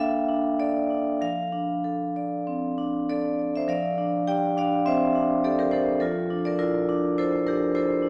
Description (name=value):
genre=classical, contemporary piece for solo vibraphone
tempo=95-106 BPM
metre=4/4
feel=rubato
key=F major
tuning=A4 = 440 Hz
part: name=vibraphone with medium hard mallets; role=solo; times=0.0-8.1 s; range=F3 to G5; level=-25 LUFS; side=equal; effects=none
room=wet recital hall reverb, RT60 1.6 s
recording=none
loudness=-25 LUFS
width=mono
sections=0.0-3.7 A section; 3.7-8.1 A section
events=none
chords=0.0 Bbmaj7; 1.2 F6; 3.7 F69